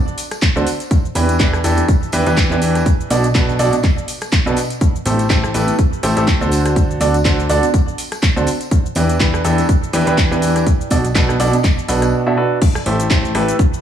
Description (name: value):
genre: piano house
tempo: 123 BPM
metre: 4/4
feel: swing 56% on 16ths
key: A dorian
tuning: A4 = 440 Hz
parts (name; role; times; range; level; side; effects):
- house drum kit; drums; 0.1-13.8 s; crash cymbal, handclaps, hi-hat, rim click, shaker; -23 LUFS; equal; none
- tambourine and congas; percussion; 0.2-12.1 s; none; -28 LUFS; right 4 dB; none
- electronic kick drum; drums; 0.4-13.7 s; none; -15 LUFS; equal; none
- clear grand piano; riff; 0.6-13.5 s; B2 to E5; -18 LUFS; right 1 dB; sidechain pumping, digital delay
- plucky analog bass; bass; 0.6-13.5 s; A1 to E2; -19 LUFS; left 1 dB; sidechain pumping
room: light reverb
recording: small room ambience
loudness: -13 LUFS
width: side -9 dB against mid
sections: 0.0-12.6 A section; 12.6-13.8 B section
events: drop 12.6-13.8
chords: 0.0 N.C.; 0.9 Em7; 2.9 Bm7; 4.8 Am7; 6.5 D7; 8.7 Em7; 10.7 Bm7; 12.6 Am7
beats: 0.42 | 0.91 1.40 1.89 2.37 | 2.86 3.35 3.84 4.32 | 4.81 5.30 5.79 6.28 | 6.76 7.25 7.74 8.23 | 8.71 9.20 9.69 10.18 | 10.66 11.15 11.64 12.13 | 12.62 13.10 13.59